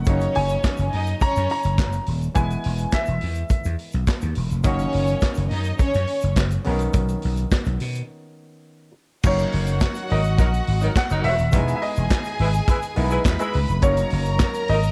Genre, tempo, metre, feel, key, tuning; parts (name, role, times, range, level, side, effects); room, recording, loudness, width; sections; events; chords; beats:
disco; 105 BPM; 4/4; straight; F# mixolydian; A4 = 442 Hz
clear concert grand piano; melody; 0.0-3.8, 9.3-14.9 s; C#5 to A#5; -30 LUFS; equal; slapback echo
mellow clav; accompaniment; 0.0-14.9 s; C#3 to B4; -34 LUFS; equal
vintage slap bass; bass; 0.0-14.9 s; D#1 to B2; -25 LUFS; equal
rich studio violin section; second line; 0.1-14.9 s; C#4 to B5; -30 LUFS; equal
vintage drum kit; drums; 0.1-14.9 s; crash cymbal, handclaps, hi-hat, kick drum, snare drum; -26 LUFS; equal
egg shaker; percussion; 0.1-14.9 s; -50 LUFS; equal
warm horn section; stabs; 10.1-14.8 s; F#3 to B4; -30 LUFS; equal
light reverb, small room ambience; dark, warm production; -22 LUFS; mono
0.0-9.2 A section; 9.2-14.9 B section
break 8.1-9.2
0.1 F#6; 2.4 E; 4.6 F#6; 6.7 Bmaj9; 9.2 F#6; 11.5 Emaj7; 13.8 F#6
| 0.06 0.64 1.21 1.78 | 2.35 2.93 3.50 4.08 | 4.65 5.22 5.80 6.37 | 6.95 7.52 8.09 8.67 | 9.24 9.81 10.39 10.96 | 11.54 12.11 12.68 13.26 | 13.83 14.40